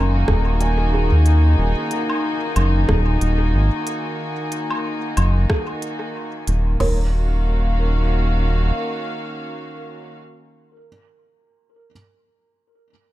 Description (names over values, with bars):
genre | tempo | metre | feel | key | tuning
ambient dub | 92 BPM | 4/4 | swing 57% on 16ths | Eb minor | A4 = 436 Hz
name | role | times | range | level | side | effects
warm studio string section | sustained chords | 0.0-10.2 s | Eb3 to Ab5 | -24 LUFS | left 1 dB | none
felt-muted upright piano | arpeggios | 0.0-11.9 s | Db4 to Bb5 | -31 LUFS | right 2 dB | tape echo
round analog bass | bass | 0.0-8.7 s | Eb1 to Eb2 | -16 LUFS | equal | none
organic electronic drum kit | drums | 0.3-7.0 s | crash cymbal, kick drum, snare drum, toms | -22 LUFS | equal | overdrive
organic electronic drum kit | drums | 0.3-6.6 s | hi-hat, rim click, woodblock | -28 LUFS | equal | overdrive, dub echo
room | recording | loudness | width
digital ambience | echo-heavy mix | -17 LUFS | side -15 dB against mid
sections
0.0-6.8 A section; 6.8-9.4 B section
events
none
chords
0.0 Ebm7